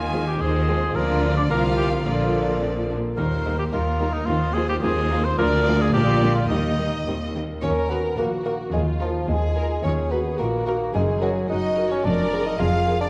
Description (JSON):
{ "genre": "cinematic, playful, whimsical film cue", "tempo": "108 BPM", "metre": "2/4", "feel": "straight", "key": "Eb major, Eb minor from 7.6 s", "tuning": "A4 = 441 Hz", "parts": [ { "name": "rich chamber violin section", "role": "melody", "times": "0.0-13.1 s", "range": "Gb4 to Ab5", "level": "-35 LUFS", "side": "equal", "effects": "none" }, { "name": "mellow cor anglais", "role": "second line", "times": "0.0-7.0 s", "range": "Eb4 to D5", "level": "-28 LUFS", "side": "equal", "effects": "none" }, { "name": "concert harp", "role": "arpeggios", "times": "0.0-13.1 s", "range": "F2 to F5", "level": "-31 LUFS", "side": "equal", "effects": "none" }, { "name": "clear studio cello section", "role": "bass", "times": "0.0-13.0 s", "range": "D2 to Eb3", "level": "-29 LUFS", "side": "equal", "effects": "none" }, { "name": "rich studio double bass section", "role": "bass", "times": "0.0-13.0 s", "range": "F1 to Eb2", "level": "-30 LUFS", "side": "equal", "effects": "none" }, { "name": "warm studio violin section", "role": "second line", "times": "0.1-13.1 s", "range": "Bb3 to F5", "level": "-35 LUFS", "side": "equal", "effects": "none" }, { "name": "rich studio viola section", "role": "accompaniment", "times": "0.1-13.1 s", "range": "D3 to Bb4", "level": "-31 LUFS", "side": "equal", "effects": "none" }, { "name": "mellow bassoon", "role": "accompaniment", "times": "7.6-13.1 s", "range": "F3 to F4", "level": "-28 LUFS", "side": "equal", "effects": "none" }, { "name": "mellow French horn section", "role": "sustained chords", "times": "7.9-13.0 s", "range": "F4 to Bb4", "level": "-35 LUFS", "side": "equal", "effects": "none" } ], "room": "wet scoring stage reverb, RT60 1.8 s", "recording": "dark, warm production", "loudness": "-22 LUFS", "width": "mono", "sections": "0.0-7.6 A section; 7.6-13.1 B section", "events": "none", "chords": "0.0 Fm7/Eb; 0.9 Bb/D; 2.1 Bb; 3.2 Eb; 4.3 F5/Eb; 5.4 Bb/D; 5.9 Bb7; 6.5 Eb; 7.6 Ebm; 8.7 Bb5/Eb; 9.8 Ebm; 10.9 Ebm/Gb; 12.0 Bb5/F" }